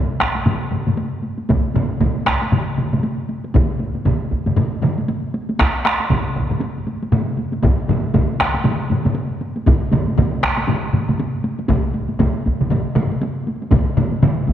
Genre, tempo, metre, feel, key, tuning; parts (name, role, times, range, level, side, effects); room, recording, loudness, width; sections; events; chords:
japanese traditional, taiko drum ensemble; 118 BPM; 4/4; swing 60% on 16ths
taiko ensemble; percussion; 0.2-14.5 s; -24 LUFS; equal
taiko ensemble; percussion; 0.2-14.4 s; -23 LUFS; left 4 dB
taiko ensemble; percussion; 0.2-14.4 s; -20 LUFS; right 2 dB
taiko ensemble; percussion; 0.2-14.5 s; -21 LUFS; equal
wet concert hall reverb, RT60 2.2 s; -17 LUFS; side -10 dB against mid
0.0-14.5 A section